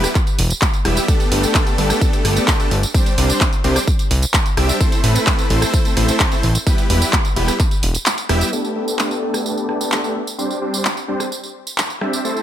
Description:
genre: EDM, festival progressive house.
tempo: 129 BPM.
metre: 4/4.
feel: straight.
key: G major.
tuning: A4 = 440 Hz.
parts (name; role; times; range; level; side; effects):
supersaw chords; riff; 0.0-12.4 s; G3 to E5; -20 LUFS; equal; sidechain pumping, low-pass filter, ping-pong delay.
fat analog bass; bass; 0.0-8.4 s; E1 to C2; -17 LUFS; equal; sidechain pumping.
pop drum kit; drums; 0.0-12.4 s; handclaps, hi-hat, rim click, tambourine; -21 LUFS; right 1 dB; none.
electronic kick drum; drums; 0.2-7.7 s; none; -18 LUFS; equal; none.
room: digital ambience.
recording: none.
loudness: -15 LUFS.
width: side -11 dB against mid.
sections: 0.0-8.5 A section; 8.5-12.4 B section.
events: drop 0.0-8.5; kick drops out 8.1-8.5; filter sweep on supersaw synth 8.5-12.4.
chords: 0.0 Em; 1.1 Gadd9; 2.9 Csus2; 4.8 Am; 6.7 Em; 8.5 Gadd9; 10.4 Csus2.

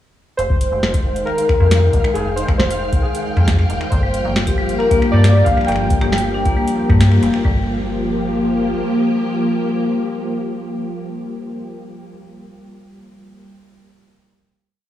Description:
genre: IDM.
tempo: 136 BPM.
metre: 4/4.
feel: straight.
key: G phrygian.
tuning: A4 = 441 Hz.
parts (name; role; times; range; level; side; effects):
warbly lo-fi synth keys; melody; 0.4-7.0 s; Ab4 to G5; -21 LUFS; left 1 dB; chorus, digital delay.
soft string machine; sustained chords; 0.4-11.7 s; Eb3 to G5; -22 LUFS; equal; ensemble chorus, sidechain pumping.
metallic FM bass; bass; 0.4-8.7 s; Eb1 to G2; -17 LUFS; equal; tube saturation.
booming analog drum machine; drums; 0.4-7.4 s; finger snaps, hi-hat, snare drum; -25 LUFS; equal; none.
flickering grainy texture; texture; 0.8-7.5 s; F5; -32 LUFS; equal; built-in reverb.
electronic kick drum; drums; 0.5-7.5 s; none; -18 LUFS; equal; none.
vibraphone with hard mallets; arpeggios; 4.0-13.5 s; G3 to G4; -23 LUFS; left 3 dB; vintage 12-bit sampler grit, digital delay.
room: light reverb, digital ambience.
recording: played on a big sound system in a bare room, stone room reverb, small room ambience.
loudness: -14 LUFS.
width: side -12 dB against mid.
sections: 0.4-7.4 groove; 7.4-11.0 final chord.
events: band accent 7.0.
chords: 0.4 Fm9; 3.9 Gm7.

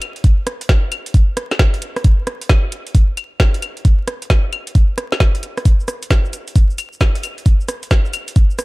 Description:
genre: UK garage.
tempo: 133 BPM.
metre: 4/4.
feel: swing 64% on 16ths.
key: none.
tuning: none.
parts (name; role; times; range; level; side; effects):
garage drum kit; drums; 0.0-8.6 s; claves, hi-hat, rim click, shaker, snare drum; -22 LUFS; equal; overdrive.
electronic kick drum; drums; 0.2-8.5 s; none; -12 LUFS; equal; overdrive.
room: digital ambience.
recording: dark, warm production, vinyl crackle.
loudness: -14 LUFS.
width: side -23 dB against mid.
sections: 0.0-8.6 A section.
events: none.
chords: none.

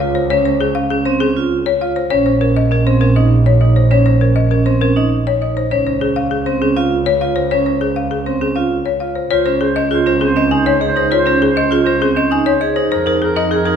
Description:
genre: classical, minimalist pattern music.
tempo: 100 BPM.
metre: 3/4.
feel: straight.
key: Db major from 9.3 s.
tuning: A4 = 442 Hz.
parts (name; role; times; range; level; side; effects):
folk marimba with hard mallets; melody; 0.0-13.8 s; Ab4 to Ab5; -17 LUFS; left 7 dB; none.
vibraphone with hard mallets; arpeggios; 0.0-13.8 s; C4 to Ab4; -17 LUFS; right 4 dB; none.
rich double bass; bass; 0.0-13.8 s; Bb1 to F2; -18 LUFS; right 2 dB; none.
clear oboe; second line; 9.3-13.8 s; Bb4 to C5; -21 LUFS; right 4 dB; none.
room: wet recital hall reverb, RT60 1.4 s.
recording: heard from further back in the room.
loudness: -12 LUFS.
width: side -8 dB against mid.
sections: 0.0-9.3 A section; 9.3-13.8 B section.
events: none.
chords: 0.0 Db; 2.1 Bbmadd9; 5.7 Db; 9.3 Dbmaj7; 12.9 F7sus4.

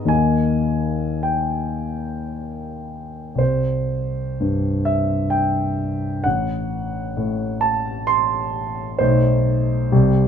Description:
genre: classical, romantic nocturne for solo piano.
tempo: 48-67 BPM.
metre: 3/4.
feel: rubato.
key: unclear.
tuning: A4 = 440 Hz.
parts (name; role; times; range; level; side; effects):
warm grand piano; solo; 0.0-10.3 s; A1 to C6; -18 LUFS; equal; none.
room: moderate studio reverb, RT60 0.6 s.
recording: minimal, uncompressed stereo recording.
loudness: -18 LUFS.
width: side -8 dB against mid.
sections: 0.0-10.3 A section.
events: none.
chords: 0.1 D#; 3.4 C5; 6.3 N.C.; 9.0 B7.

